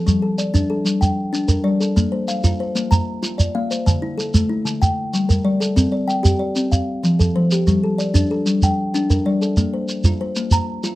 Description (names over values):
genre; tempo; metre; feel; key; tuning
southern african traditional, mbira-style interlocking cycle; 126 BPM (dotted quarters); 12/8; straight; G dorian; A4 = 436 Hz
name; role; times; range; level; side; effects
kalimba; arpeggios; 0.0-11.0 s; D3 to Bb5; -19 LUFS; left 1 dB; none
shekere; percussion; 0.1-11.0 s; none; -18 LUFS; right 2 dB; none
room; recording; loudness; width
wet small room reverb, RT60 0.6 s; rough home demo mix; -16 LUFS; side -17 dB against mid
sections
0.1-11.0 A section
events
none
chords
0.1 Gm; 2.0 Bb; 3.9 Dm; 4.8 Gm; 5.8 C5; 6.7 F; 7.7 Gm; 9.6 Bb5